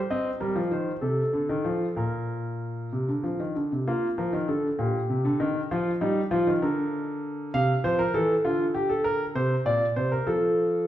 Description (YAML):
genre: classical, baroque-style two-part invention for grand piano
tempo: 65 BPM (dotted quarters)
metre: 6/8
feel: straight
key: Bb major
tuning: A4 = 436 Hz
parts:
  - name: warm concert grand piano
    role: solo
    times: 0.1-10.9 s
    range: Bb2 to F5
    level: -24 LUFS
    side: equal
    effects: none
room: wet stone room reverb, RT60 1.4 s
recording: heard from further back in the room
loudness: -24 LUFS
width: side -12 dB against mid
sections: 0.0-3.9 A section; 3.9-10.9 B section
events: none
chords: 0.1 Cm7; 1.0 F7/C; 2.0 Bb; 4.8 Cm7/Bb; 5.7 Ebadd9; 6.6 Bb/D; 7.5 F/C; 8.4 Gm7/D; 9.3 Bbadd9; 10.3 F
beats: | 0.11 1.02 | 1.96 2.91 | 3.86 4.78 | 5.70 6.62 | 7.53 8.44 | 9.35 10.27